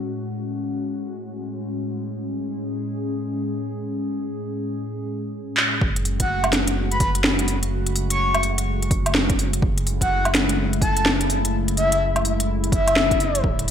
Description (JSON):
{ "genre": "future garage", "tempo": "126 BPM", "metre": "4/4", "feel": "swing 63% on 16ths", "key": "F# minor", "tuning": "A4 = 438 Hz", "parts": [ { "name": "warbly tape-like pad", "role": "sustained chords", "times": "0.0-13.7 s", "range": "A2 to G#4", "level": "-27 LUFS", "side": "left 1 dB", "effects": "chorus, built-in reverb, sidechain pumping" }, { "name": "organic electronic drum kit", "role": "drums", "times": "5.6-13.7 s", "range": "handclaps, hi-hat, snare drum, woodblock", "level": "-22 LUFS", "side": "equal", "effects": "overdrive, gated reverb" }, { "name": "warm sub bass", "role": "bass", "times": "5.8-13.7 s", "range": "D1 to F#1", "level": "-25 LUFS", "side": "equal", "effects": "tube saturation, sidechain pumping" }, { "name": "electronic kick drum", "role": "drums", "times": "5.8-13.6 s", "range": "none", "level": "-23 LUFS", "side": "equal", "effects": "overdrive" }, { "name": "breathy flute-like synth lead", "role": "melody", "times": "6.2-13.4 s", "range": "E5 to C#6", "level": "-24 LUFS", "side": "left 1 dB", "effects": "analog chorus, ping-pong delay" } ], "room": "moderate plate reverb, RT60 2.5 s", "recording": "bright 1980s-style digital production", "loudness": "-20 LUFS", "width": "side -8 dB against mid", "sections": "0.0-5.8 A section; 5.8-13.7 B section", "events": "drum fill 5.6", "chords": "0.0 F#madd9" }